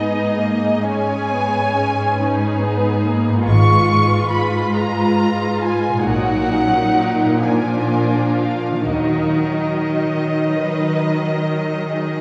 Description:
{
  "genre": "classical, slow romantic movement for symphony orchestra",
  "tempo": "39-48 BPM (dotted quarters)",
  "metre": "12/8",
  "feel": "rubato",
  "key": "Eb minor",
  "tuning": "A4 = 442 Hz",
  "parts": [
    { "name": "muted symphonic violin section", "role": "melody", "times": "0.0-12.2 s", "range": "Eb5 to Db6", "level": "-24 LUFS", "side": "equal", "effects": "none" },
    { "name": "muted chamber violin section", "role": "second line", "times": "0.0-12.2 s", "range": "Db4 to Eb5", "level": "-29 LUFS", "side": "equal", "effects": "none" },
    { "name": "muted studio viola section", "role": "accompaniment", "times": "0.0-12.2 s", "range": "F3 to F4", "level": "-24 LUFS", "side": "equal", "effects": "none" },
    { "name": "concert harp", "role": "arpeggios", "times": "0.0-12.2 s", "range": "Ab2 to Ab4", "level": "-27 LUFS", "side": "equal", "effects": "none" },
    { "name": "muted studio cello section", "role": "bass", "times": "0.0-12.2 s", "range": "Ab2 to Eb3", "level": "-24 LUFS", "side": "equal", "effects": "none" },
    { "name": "muted studio double bass section", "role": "bass", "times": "3.5-9.8 s", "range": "Ab1 to Eb2", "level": "-23 LUFS", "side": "equal", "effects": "none" }
  ],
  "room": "wet concert hall reverb, RT60 2.3 s",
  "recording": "heard from further back in the room",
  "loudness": "-18 LUFS",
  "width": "mono",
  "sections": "0.0-12.2 A section",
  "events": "none",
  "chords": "0.0 Abm; 3.5 Fdim/Ab; 6.1 Ebm/Bb; 7.4 Bb7; 8.9 Ebm",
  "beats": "0.84 2.19 | 3.47 4.75 6.07 7.43 | 8.89 10.38 11.91"
}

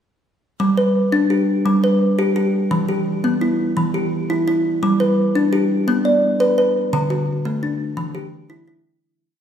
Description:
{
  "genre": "southern african traditional, mbira-style interlocking cycle",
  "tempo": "114 BPM (dotted quarters)",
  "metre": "12/8",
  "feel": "straight",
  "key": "G major",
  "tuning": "A4 = 440 Hz",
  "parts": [
    { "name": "kalimba", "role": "solo", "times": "0.6-9.2 s", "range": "D3 to D5", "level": "-16 LUFS", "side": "equal", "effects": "none" }
  ],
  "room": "wet recital hall reverb, RT60 1.7 s",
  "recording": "recorded in a church or concert hall",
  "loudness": "-16 LUFS",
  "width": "side -8 dB against mid",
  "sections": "0.6-9.0 A section",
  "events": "fade-out 6.9-9.0",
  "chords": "0.6 G; 2.7 Em; 4.8 G; 5.9 Bm; 6.9 D; 8.0 Em",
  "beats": "| 0.60 1.13 1.66 2.18 | 2.71 3.24 3.77 4.29 | 4.82 5.35 5.88 6.40 | 6.93 7.45 7.97 8.50"
}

